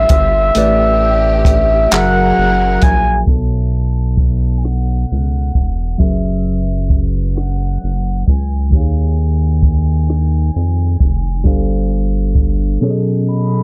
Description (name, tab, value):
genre	slow six-eight R&B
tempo	44 BPM (dotted quarters)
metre	6/8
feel	straight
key	unclear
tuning	A4 = 438 Hz
part	mellow horn-like synth lead	melody	0.0-13.2 s	E5 to A5	-20 LUFS	equal	chorus
part	tine electric piano	accompaniment	0.0-13.6 s	B2 to B5	-22 LUFS	equal	phaser
part	warm studio string section	sustained chords	0.0-3.3 s	F#3 to A#4	-28 LUFS	equal	none
part	rubbery square bass	bass	0.0-12.8 s	E1 to E#2	-18 LUFS	equal	transformer saturation
part	compact cocktail drum kit	drums	0.1-12.6 s	handclaps, hi-hat, kick drum, rim click	-17 LUFS	equal	soft clipping on snare
room	little or no reverb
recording	blown-out, overdriven recording, overdrive, low-pass filter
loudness	-15 LUFS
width	mono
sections	0.0-3.3 A section; 3.3-13.6 B section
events	filter sweep 3.3-13.6; tine electric piano fill 12.8-13.6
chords	0.0 G9sus4; 0.5 A9sus4; 1.9 F#9; 3.3 B9sus4; 6.0 F#9sus4; 8.7 D#9sus4; 11.5 G9sus4; 12.8 B13